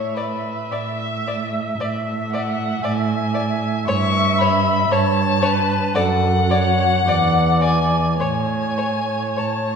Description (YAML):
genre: classical, slow romantic movement for string quartet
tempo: 51-59 BPM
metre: 4/4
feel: rubato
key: A major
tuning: A4 = 440 Hz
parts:
  - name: muted violin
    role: melody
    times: 0.0-9.8 s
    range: B4 to C#6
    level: -22 LUFS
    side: left 5 dB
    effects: none
  - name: muted viola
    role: accompaniment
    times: 0.0-9.8 s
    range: A4 to E5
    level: -24 LUFS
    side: right 2 dB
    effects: none
  - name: muted cello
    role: bass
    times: 0.0-9.8 s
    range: E2 to A2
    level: -21 LUFS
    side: right 3 dB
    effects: none
  - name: muted violin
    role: second line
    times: 0.2-9.4 s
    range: C#5 to D5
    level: -28 LUFS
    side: left 2 dB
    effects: none
room: wet scoring stage reverb, RT60 1.6 s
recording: heard from further back in the room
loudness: -17 LUFS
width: side -6 dB against mid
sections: 0.0-9.8 A section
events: none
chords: 0.0 N.C.; 3.9 A7/G; 6.0 D/F# (rootless); 7.1 E7; 8.2 A